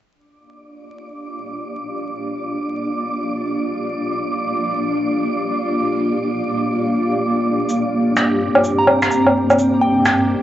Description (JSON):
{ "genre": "future garage", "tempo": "free time", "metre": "none", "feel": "none", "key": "G minor", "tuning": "A4 = 441 Hz", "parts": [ { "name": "granular cloud pad", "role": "sustained chords", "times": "1.3-10.4 s", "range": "G2 to G5", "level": "-20 LUFS", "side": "equal", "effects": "built-in reverb, cassette tape" }, { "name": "wind-like tuned noise texture", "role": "texture", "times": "1.0-10.4 s", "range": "D4 to D6", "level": "-23 LUFS", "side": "equal", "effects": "built-in reverb, cassette tape" }, { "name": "electronic shaker, finger snaps and woodblock", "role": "drums", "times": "7.7-10.2 s", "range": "none", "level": "-16 LUFS", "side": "equal", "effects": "overdrive, cassette tape" }, { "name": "soft synth bell", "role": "melody", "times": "8.8-10.2 s", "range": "G5 to Bb5", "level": "-20 LUFS", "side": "equal", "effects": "chorus, phaser, cassette tape, tape echo" } ], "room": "wet spring reverb, RT60 1.9 s, digital ambience", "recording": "home recording on cassette, vinyl crackle, nothing above 7.9 kHz", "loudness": "-16 LUFS", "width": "side -12 dB against mid", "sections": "0.1-10.4 A section", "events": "fade-in on ambient pad 0.1-10.4", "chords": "0.1 Gm7; 7.7 C5/G", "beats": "free time" }